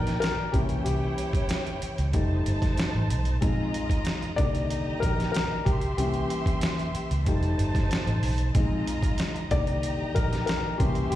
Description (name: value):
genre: lush 1970s-style soul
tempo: 94 BPM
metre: 4/4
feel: straight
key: C minor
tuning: A4 = 440 Hz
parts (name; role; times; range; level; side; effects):
- warm studio violin section; second line; 0.0-11.2 s; Eb4 to C6; -35 LUFS; right 1 dB; slapback echo
- warm grand piano; accompaniment; 0.0-11.2 s; D3 to D5; -30 LUFS; left 4 dB; slapback echo
- vintage muted fingered electric bass; bass; 0.0-11.2 s; F1 to Db2; -27 LUFS; right 1 dB; none
- boom bap sampler-style drum kit; drums; 0.1-11.2 s; hi-hat, kick drum, snare drum; -28 LUFS; right 1 dB; overdrive
room: little or no reverb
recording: live gig heard through the venue's PA, recital hall reverb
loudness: -24 LUFS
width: side -13 dB against mid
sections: 0.0-11.2 A section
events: grand piano solo 0.0-11.2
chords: 0.0 Cm9 (rootless); 0.5 C7b9; 2.1 F9; 3.4 Bb9sus4; 4.4 Cm9; 5.7 C7b9; 7.3 F9; 8.6 Bb9sus4; 9.5 Cm9